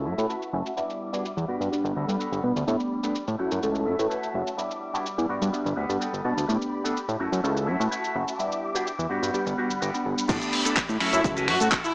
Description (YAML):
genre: filtered disco house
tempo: 126 BPM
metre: 4/4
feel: straight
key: A mixolydian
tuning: A4 = 441 Hz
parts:
  - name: funky polysynth comp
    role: accompaniment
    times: 0.0-11.8 s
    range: F#3 to B4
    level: -29 LUFS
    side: equal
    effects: chorus, phaser, sidechain pumping, low-pass filter
  - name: bright symphonic string section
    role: sustained chords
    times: 0.0-11.9 s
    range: G3 to D6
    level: -33 LUFS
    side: left 1 dB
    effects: sidechain pumping, low-pass filter
  - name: fat analog bass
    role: bass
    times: 0.0-11.7 s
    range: F#1 to B2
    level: -27 LUFS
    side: equal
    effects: sidechain pumping, low-pass filter
  - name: electric guitar with an envelope filter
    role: riff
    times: 0.1-11.8 s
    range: A3 to A5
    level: -34 LUFS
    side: equal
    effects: sidechain pumping, low-pass filter
  - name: dusty soul sampler-style drum kit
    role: drums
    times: 0.2-11.9 s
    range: crash cymbal, finger snaps, handclaps, hi-hat, shaker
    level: -29 LUFS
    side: equal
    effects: sidechain pumping on perc, low-pass filter on perc, sidechain pumping on hats, low-pass filter on hats, sidechain pumping on cymbals, low-pass filter on cymbals, low-pass filter on snare, low-pass filter on room
  - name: electronic kick drum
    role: drums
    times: 10.3-11.8 s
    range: none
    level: -28 LUFS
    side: equal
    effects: none
  - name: bright horn section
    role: melody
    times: 11.1-11.9 s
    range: E4 to F#4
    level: -24 LUFS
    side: equal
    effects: vintage 12-bit sampler grit, sidechain pumping, low-pass filter
room: light reverb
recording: dry, gritty hardware recording, small speaker sound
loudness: -24 LUFS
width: side -26 dB against mid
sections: 0.0-10.3 A section; 10.3-11.9 B section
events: filter sweep 0.0-10.3; clean electric guitar fill 5.1-6.5; drop 10.3-11.9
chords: 0.0 F#m7; 0.8 Em7; 1.5 Gmaj7; 2.7 A9sus4; 3.4 F#m7; 4.6 Em7; 5.3 Gmaj7; 6.5 A9sus4; 7.2 F#m7; 8.4 Em7; 9.1 Gmaj7; 10.3 A9sus4; 11.0 F#m7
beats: 0.29 | 0.77 1.25 1.72 2.20 | 2.67 3.15 3.63 4.10 | 4.58 5.06 5.53 6.01 | 6.49 6.96 7.44 7.91 | 8.39 8.87 9.34 9.82 | 10.29 10.77 11.25 11.72